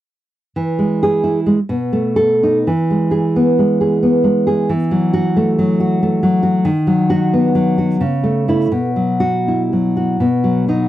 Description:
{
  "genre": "romantic piece for solo classical guitar",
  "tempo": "78-94 BPM",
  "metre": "3/4",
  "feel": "rubato",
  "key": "E major",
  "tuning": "A4 = 438 Hz",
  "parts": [
    { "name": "nylon-string guitar", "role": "solo", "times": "0.6-10.9 s", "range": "B2 to A4", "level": "-13 LUFS", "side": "equal", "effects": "none" }
  ],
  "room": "light reverb",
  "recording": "dry, close 1970s-style studio recording",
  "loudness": "-13 LUFS",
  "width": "side -13 dB against mid",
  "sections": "0.6-2.7 A section; 2.7-10.9 B section",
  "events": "none",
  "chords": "0.6 E; 1.6 B7; 2.7 E; 4.7 F#m7/E; 6.7 B/D#; 8.0 A/C#; 8.7 Bsus4; 10.2 B"
}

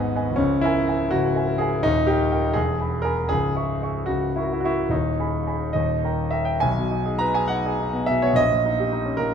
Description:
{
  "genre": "classical, romantic character piece for solo piano",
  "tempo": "67-84 BPM (dotted quarters)",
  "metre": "6/8",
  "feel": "rubato",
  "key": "G# minor",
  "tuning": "A4 = 442 Hz",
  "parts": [
    { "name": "warm concert grand piano", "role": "solo", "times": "0.0-9.3 s", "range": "C#1 to C#6", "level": "-20 LUFS", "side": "equal", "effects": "none" }
  ],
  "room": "moderate recital hall reverb, RT60 1.9 s",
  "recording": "none",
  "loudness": "-20 LUFS",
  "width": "side -7 dB against mid",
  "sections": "0.0-6.6 A section; 6.6-9.3 B section",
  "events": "none",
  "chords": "0.4 A#m7b5/C#; 1.8 D#; 2.6 E; 3.3 C#m; 4.1 A#dim/C#; 4.9 G#m/D#; 5.8 D#; 6.6 G#m/B; 8.4 D#7/A#"
}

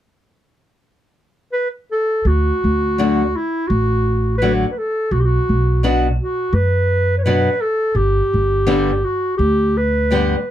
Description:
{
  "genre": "mexican folk, mariachi",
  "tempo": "84 BPM",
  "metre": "4/4",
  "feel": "straight",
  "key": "D major",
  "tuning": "A4 = 439 Hz",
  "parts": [
    { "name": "mellow clarinet", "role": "melody", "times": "1.5-10.5 s", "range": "E4 to C#5", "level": "-19 LUFS", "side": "right 1 dB", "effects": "none" },
    { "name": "upright bass", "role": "bass", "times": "2.3-10.3 s", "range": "G1 to F#2", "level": "-18 LUFS", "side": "equal", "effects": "none" },
    { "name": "nylon-string guitar", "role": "accompaniment", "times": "3.0-10.3 s", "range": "G2 to G4", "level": "-17 LUFS", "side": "left 3 dB", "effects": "none" }
  ],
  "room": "little or no reverb",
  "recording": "close, detailed microphones",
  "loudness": "-15 LUFS",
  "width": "side -11 dB against mid",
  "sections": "0.0-2.3 A section; 2.3-10.5 B section",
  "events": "none",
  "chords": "0.0 N.C.; 2.3 D; 5.1 Bm; 8.0 G"
}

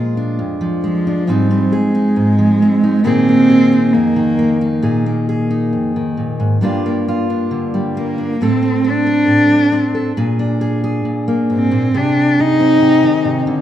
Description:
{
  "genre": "acoustic folk-pop ballad",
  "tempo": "68 BPM",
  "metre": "4/4",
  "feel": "straight",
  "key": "unclear",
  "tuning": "A4 = 440 Hz",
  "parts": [
    { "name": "fingerpicked steel-string acoustic guitar", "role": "accompaniment", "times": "0.0-13.6 s", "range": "F2 to A4", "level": "-16 LUFS", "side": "equal", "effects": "none" },
    { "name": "dark cello", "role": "melody", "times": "0.8-13.6 s", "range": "F3 to Eb4", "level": "-14 LUFS", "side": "equal", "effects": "none" }
  ],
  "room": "moderate large studio reverb, RT60 1.3 s",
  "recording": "minimal, uncompressed stereo recording",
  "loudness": "-12 LUFS",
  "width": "side -11 dB against mid",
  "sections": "0.0-13.6 A section",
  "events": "none",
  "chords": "0.0 Bb7; 1.3 Fm7/Ab; 3.0 Bb7sus4; 6.6 Gm7; 8.4 Amadd11; 10.2 Bb7; 11.9 Ab/C"
}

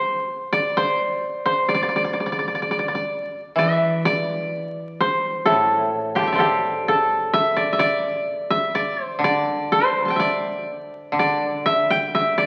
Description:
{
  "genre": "japanese traditional",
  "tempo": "64 BPM",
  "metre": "2/4",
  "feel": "rubato",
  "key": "D suspended pentatonic",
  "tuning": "A4 = 441 Hz",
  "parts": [
    { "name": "koto", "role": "melody", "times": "0.0-12.5 s", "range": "G4 to C6", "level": "-22 LUFS", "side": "equal", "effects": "none" },
    { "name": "koto", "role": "accompaniment", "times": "3.6-12.5 s", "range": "A2 to E3", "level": "-28 LUFS", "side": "equal", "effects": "none" }
  ],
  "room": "wet recital hall reverb, RT60 1.6 s",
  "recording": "very old 78 rpm record, vinyl crackle",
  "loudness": "-21 LUFS",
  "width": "mono",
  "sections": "0.0-3.6 A section; 3.6-12.5 B section",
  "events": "none",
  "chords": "none"
}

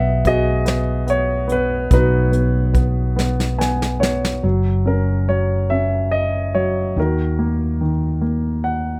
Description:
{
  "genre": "acoustic folk-pop ballad",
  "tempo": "48 BPM (dotted quarters)",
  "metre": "6/8",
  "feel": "straight",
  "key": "unclear",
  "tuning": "A4 = 443 Hz",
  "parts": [
    { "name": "warm baby grand piano", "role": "melody", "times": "0.0-9.0 s", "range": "D#3 to G#5", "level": "-22 LUFS", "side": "equal", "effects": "none" },
    { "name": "fingered electric bass", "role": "bass", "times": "0.0-9.0 s", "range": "F#1 to D#2", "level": "-22 LUFS", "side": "equal", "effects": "none" },
    { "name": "soft brush drum kit", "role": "drums", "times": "0.2-4.4 s", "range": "hi-hat, kick drum, snare drum", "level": "-22 LUFS", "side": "equal", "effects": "none" }
  ],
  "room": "light reverb",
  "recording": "none",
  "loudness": "-19 LUFS",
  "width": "mono",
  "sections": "0.0-4.4 A section; 4.4-9.0 B section",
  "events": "drum fill 3.2-4.4; grand piano fill 3.2-4.4, 8.2-9.0",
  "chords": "0.0 G#m7/B; 4.4 F#5; 7.0 D#m"
}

